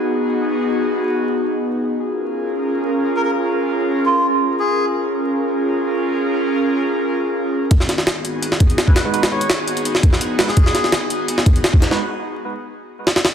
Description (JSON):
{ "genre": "drum and bass, jungle", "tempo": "168 BPM", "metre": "4/4", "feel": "straight", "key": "G# dorian", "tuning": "A4 = 437 Hz", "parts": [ { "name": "airy breathy pad", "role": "sustained chords", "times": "0.0-12.0 s", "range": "B3 to A#4", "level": "-19 LUFS", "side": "equal", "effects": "chorus" }, { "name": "melodica", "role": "melody", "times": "3.2-4.9, 8.9-11.0 s", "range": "E#4 to C#5", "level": "-22 LUFS", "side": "equal", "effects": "dub echo" }, { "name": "saturated sub bass", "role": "bass", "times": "7.7-12.0 s", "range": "G#1 to A#1", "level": "-36 LUFS", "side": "equal", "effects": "high-pass filter" }, { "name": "jungle sampler-style drum kit", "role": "drums", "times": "7.7-13.3 s", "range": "hi-hat, kick drum, snare drum", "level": "-15 LUFS", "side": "equal", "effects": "studio reverb" }, { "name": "tine electric piano", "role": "stabs", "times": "9.1-12.0 s", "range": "G#3 to B4", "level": "-26 LUFS", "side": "right 4 dB", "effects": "medium stereo tremolo, low-pass filter, dub echo" } ], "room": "moderate plate reverb, RT60 1.9 s, digital ambience", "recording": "dense, heavily limited modern master, vinyl crackle", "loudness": "-16 LUFS", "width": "side -8 dB against mid", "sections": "0.0-7.7 A section; 7.7-13.3 B section", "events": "filter sweep on analog synth pad 0.0-7.7; build-up 7.7-13.3; break 12.0-13.3; drum fill 13.1", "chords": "0.0 G#m7; 2.0 A#m7; 7.7 G#m7" }